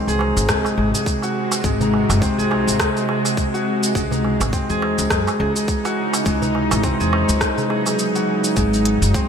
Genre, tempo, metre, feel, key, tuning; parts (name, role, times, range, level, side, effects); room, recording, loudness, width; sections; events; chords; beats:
organic downtempo; 104 BPM; 4/4; swing 58% on 16ths; A4 = 444 Hz
bowed-like drone; sustained chords; 0.0-9.3 s; B#2 to F#4; -24 LUFS; right 2 dB; built-in reverb, sidechain pumping
Celtic harp; arpeggios; 0.0-9.3 s; G#3 to G#4; -21 LUFS; left 1 dB; ping-pong delay
upright bass; bass; 0.1-9.1 s; F#1 to F#2; -22 LUFS; equal
organic electronic drum kit; drums; 0.1-9.3 s; hi-hat, rim click, shaker; -25 LUFS; equal; gated reverb
darbuka; percussion; 0.2-8.0 s; -28 LUFS; right 6 dB
electronic kick drum; drums; 0.5-9.3 s; -24 LUFS; equal
moderate plate reverb, RT60 2.9 s; bright 1980s-style digital production; -17 LUFS; side -7 dB against mid
0.0-8.6 A section
kick drops out 8.0-8.6
0.0 G#7; 4.0 C#madd9; 8.6 G#7
0.49 1.07 | 1.64 2.22 2.80 3.37 | 3.95 4.53 5.11 5.68 | 6.26 6.84 7.41 7.99 | 8.57 9.14